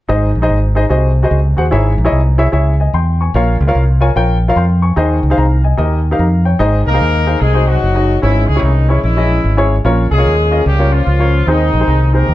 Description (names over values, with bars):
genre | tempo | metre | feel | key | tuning
uptempo gospel | 148 BPM | 4/4 | swing 65% on 8ths | Ab major | A4 = 441 Hz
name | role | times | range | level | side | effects
warm upright piano | accompaniment | 0.1-12.3 s | Ab2 to Db6 | -16 LUFS | left 1 dB | none
fingered electric bass | bass | 0.1-12.3 s | Gb1 to F2 | -12 LUFS | equal | none
dark horn section | melody | 6.9-12.3 s | Eb3 to Bb4 | -16 LUFS | left 2 dB | none
room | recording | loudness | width
light reverb | none | -10 LUFS | side -15 dB against mid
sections
0.1-6.6 A section; 6.6-12.3 B section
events
none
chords
0.1 Ab; 0.9 Ab7/C; 1.7 Dbm/Ab; 3.3 Bbm; 5.0 Ab; 5.8 Eb; 6.6 Ab; 7.4 Ab7/C; 8.2 Dbm/Ab; 9.8 Bbm; 11.5 Ab